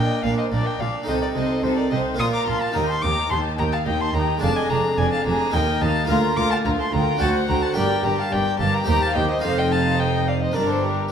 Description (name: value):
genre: classical, baroque-style concerto movement with solo episodes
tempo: 108 BPM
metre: 3/4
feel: straight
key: Bb major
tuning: A4 = 440 Hz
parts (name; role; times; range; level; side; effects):
- warm chamber violin section; melody; 0.0-11.1 s; G4 to C5; -34 LUFS; left 4 dB; none
- warm violin; melody; 0.0-11.1 s; Bb4 to Eb6; -26 LUFS; left 2 dB; none
- rich chamber violin section; second line; 0.0-11.1 s; G4 to C6; -28 LUFS; left 4 dB; none
- harpsichord; accompaniment; 0.0-11.1 s; D2 to D5; -25 LUFS; right 2 dB; none
- warm chamber viola section; accompaniment; 0.0-11.1 s; D4 to G4; -28 LUFS; left 2 dB; none
- rich chamber double bass section; bass; 0.0-11.1 s; F1 to Eb2; -26 LUFS; right 3 dB; none
- warm chamber cello section; bass; 0.0-11.1 s; D2 to C3; -27 LUFS; right 2 dB; none
room: wet recital hall reverb, RT60 1.2 s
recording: minimal, uncompressed stereo recording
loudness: -19 LUFS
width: side -8 dB against mid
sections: 0.0-11.1 A section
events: none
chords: 0.0 Bb; 1.1 Adim/C; 2.2 Bb5; 2.8 Eb; 4.4 Ddim/F; 5.5 Eb; 6.1 Bb/D; 7.2 D7; 7.8 Gm; 8.9 Cm/Eb; 9.4 F5; 10.6 Gm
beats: 0.52 | 1.08 1.64 2.20 | 2.75 3.31 3.87 | 4.43 4.99 5.54 | 6.10 6.66 7.21 | 7.77 8.32 8.88 | 9.44 10.00 10.56